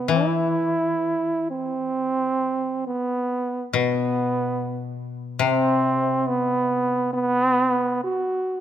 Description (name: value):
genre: japanese traditional, Japanese chamber music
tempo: 62-72 BPM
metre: 2/4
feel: rubato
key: unclear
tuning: A4 = 440 Hz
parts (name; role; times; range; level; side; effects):
- clear trombone; melody; 0.0-8.6 s; B3 to F#4; -22 LUFS; right 2 dB; none
- koto; accompaniment; 0.0-8.0 s; B2 to E3; -26 LUFS; left 7 dB; none
room: light reverb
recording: close, detailed microphones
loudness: -21 LUFS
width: side -10 dB against mid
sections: 0.0-2.0 A section; 2.0-8.6 B section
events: none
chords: none